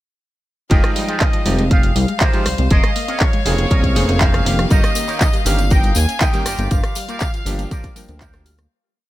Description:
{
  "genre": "nu-disco, nu disco",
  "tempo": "120 BPM",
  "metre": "4/4",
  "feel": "straight",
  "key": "F minor",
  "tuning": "A4 = 440 Hz",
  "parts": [
    { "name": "bright trumpet section", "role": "melody", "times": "0.7-8.2 s", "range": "C5 to Ab5", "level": "-26 LUFS", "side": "equal", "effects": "ping-pong delay" },
    { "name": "bright electric grand piano", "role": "accompaniment", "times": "0.7-8.5 s", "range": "Db3 to G5", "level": "-25 LUFS", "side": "right 2 dB", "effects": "sidechain pumping" },
    { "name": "rich chamber string section", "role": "sustained chords", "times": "0.7-8.7 s", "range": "F5", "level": "-30 LUFS", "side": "left 5 dB", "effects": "sidechain pumping" },
    { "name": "analog pluck", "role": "arpeggios", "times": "0.7-8.7 s", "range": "D3 to Db4", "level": "-28 LUFS", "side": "left 3 dB", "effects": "chorus, sidechain pumping, ping-pong delay" },
    { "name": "electric guitar with an envelope filter", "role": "riff", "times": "0.7-8.7 s", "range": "Db4 to G5", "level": "-27 LUFS", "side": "right 3 dB", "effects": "lush chorus" },
    { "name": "chorused synth bass", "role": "bass", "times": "0.7-8.7 s", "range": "F1 to Eb2", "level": "-18 LUFS", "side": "equal", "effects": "sidechain pumping" },
    { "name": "electronic kick drum", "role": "drums", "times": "0.7-8.3 s", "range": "none", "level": "-16 LUFS", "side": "equal", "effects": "none" },
    { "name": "pop drum kit", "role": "drums", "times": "0.7-8.7 s", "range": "handclaps, hi-hat, rim click", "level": "-23 LUFS", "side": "equal", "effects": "none" },
    { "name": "tambourine", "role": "percussion", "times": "4.7-8.7 s", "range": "none", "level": "-31 LUFS", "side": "left 6 dB", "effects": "none" }
  ],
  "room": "digital ambience",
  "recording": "none",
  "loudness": "-14 LUFS",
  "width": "side -15 dB against mid",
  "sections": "0.7-8.7 drop",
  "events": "drop 0.7-8.7; fade-out 6.0-8.7; clean electric guitar fill 7.7-8.7",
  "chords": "0.7 Fm9; 2.7 Bbm9/F; 4.7 Eb7/G; 6.5 Gm7",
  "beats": "| 0.71 1.21 1.71 2.21 | 2.71 3.21 3.71 4.21 | 4.71 5.21 5.71 6.21 | 6.71 7.21 7.71 8.21"
}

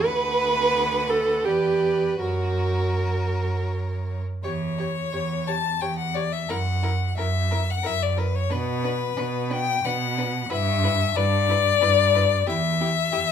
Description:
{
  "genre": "classical, slow romantic movement for string quartet",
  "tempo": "78-92 BPM",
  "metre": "3/4",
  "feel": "rubato",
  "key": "B minor",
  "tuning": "A4 = 441 Hz",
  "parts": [
    { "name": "clear violin", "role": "melody", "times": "0.0-13.3 s", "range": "B4 to A5", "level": "-25 LUFS", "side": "left 10 dB", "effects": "none" },
    { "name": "rich violin", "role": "second line", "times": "0.0-13.2 s", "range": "G4 to C#5", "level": "-33 LUFS", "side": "left 2 dB", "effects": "none" },
    { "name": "rich viola", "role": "accompaniment", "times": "0.0-13.2 s", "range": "D4 to B4", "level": "-25 LUFS", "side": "right 3 dB", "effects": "none" },
    { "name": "rich cello", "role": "bass", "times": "0.0-13.3 s", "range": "D2 to B2", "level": "-26 LUFS", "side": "right 3 dB", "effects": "none" }
  ],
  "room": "moderate large studio reverb, RT60 1.0 s",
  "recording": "minimal, uncompressed stereo recording",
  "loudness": "-21 LUFS",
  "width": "side -8 dB against mid",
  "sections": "0.0-4.4 A section; 4.4-13.3 B section",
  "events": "none",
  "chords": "0.0 Bm/D; 1.5 Em7; 2.2 F#; 4.4 C#dim/E; 6.5 F#7(no3); 8.5 Bm; 10.5 G6; 12.5 N.C.",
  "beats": "| 0.05 0.75 1.46 | 2.20 2.96 3.70 | 4.44 5.13 5.81 | 6.49 7.17 7.84 | 8.50 9.16 9.84 | 10.50 11.16 11.82 | 12.47 13.13"
}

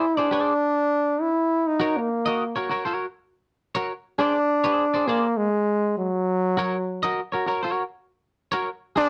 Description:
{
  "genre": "funk",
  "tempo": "101 BPM",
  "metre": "4/4",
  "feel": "straight",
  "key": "unclear",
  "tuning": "A4 = 439 Hz",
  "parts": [
    { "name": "clear trombone", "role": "melody", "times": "0.0-9.1 s", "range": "Gb3 to E4", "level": "-24 LUFS", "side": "equal", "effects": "slapback echo" },
    { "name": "semi-hollow electric guitar", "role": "accompaniment", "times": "0.0-9.1 s", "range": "Gb4 to Eb5", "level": "-27 LUFS", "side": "equal", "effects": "lush chorus" }
  ],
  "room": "light reverb",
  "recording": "dark, warm production",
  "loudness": "-24 LUFS",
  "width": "mono",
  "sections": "0.0-3.9 A section; 3.9-9.1 B section",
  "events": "trombone solo 0.0-3.9",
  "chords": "0.0 D7(b5, no3); 1.5 Bbm; 3.9 Bb9 (rootless); 6.3 Gb",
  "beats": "0.32 0.91 | 1.51 2.10 2.70 3.29 | 3.89 4.48 5.08 5.68 | 6.27 6.87 7.46 8.06 | 8.66"
}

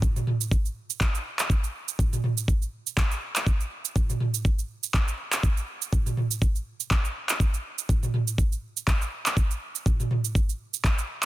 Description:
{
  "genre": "house",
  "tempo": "122 BPM",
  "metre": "4/4",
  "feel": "swing 55% on 16ths",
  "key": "none",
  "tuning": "none",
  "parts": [
    { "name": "deep house drum kit", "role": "drums", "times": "0.0-11.3 s", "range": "handclaps, shaker, toms", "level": "-27 LUFS", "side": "right 2 dB", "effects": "none" },
    { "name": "electronic kick drum", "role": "drums", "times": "0.0-11.0 s", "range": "none", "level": "-23 LUFS", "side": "equal", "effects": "none" }
  ],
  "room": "little or no reverb",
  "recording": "dense, heavily limited modern master",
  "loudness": "-24 LUFS",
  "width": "side -16 dB against mid",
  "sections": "0.0-11.3 A section",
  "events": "none",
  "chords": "none",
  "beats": "| 0.03 0.52 1.01 1.50 | 1.99 2.48 2.98 3.47 | 3.96 4.45 4.94 5.43 | 5.93 6.42 6.91 7.40 | 7.89 8.39 8.88 9.37 | 9.86 10.35 10.85"
}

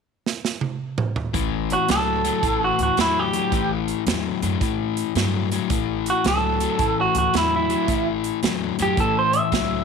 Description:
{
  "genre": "electric blues shuffle",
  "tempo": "110 BPM",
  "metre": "4/4",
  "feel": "swing 66% on 8ths",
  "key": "A mixolydian",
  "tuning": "A4 = 440 Hz",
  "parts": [
    { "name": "natural country drum kit", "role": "drums", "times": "0.3-9.7 s", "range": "hi-hat, kick drum, snare drum, toms", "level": "-26 LUFS", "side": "right 5 dB", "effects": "none" },
    { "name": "overdriven semi-hollow guitar", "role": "riff", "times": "1.3-9.8 s", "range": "A2 to F#3", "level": "-24 LUFS", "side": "left 15 dB", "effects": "none" },
    { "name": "upright bass", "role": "bass", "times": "1.3-9.8 s", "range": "A1 to A2", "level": "-28 LUFS", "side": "right 1 dB", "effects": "none" },
    { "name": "electric guitar through a small old amp", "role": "melody", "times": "1.7-9.8 s", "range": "E4 to E5", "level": "-21 LUFS", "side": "right 3 dB", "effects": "none" }
  ],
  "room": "light reverb, small room reverb",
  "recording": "1960s-style stereo",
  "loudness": "-19 LUFS",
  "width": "side -5 dB against mid",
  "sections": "0.0-1.3 A section; 1.3-9.8 B section",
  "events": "drum fill 0.2-1.3",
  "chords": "0.0 N.C.; 1.3 A",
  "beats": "0.25 0.79 | 1.34 1.89 2.43 2.98 | 3.52 4.07 4.61 5.16 | 5.70 6.25 6.79 7.34 | 7.88 8.43 8.97 9.52"
}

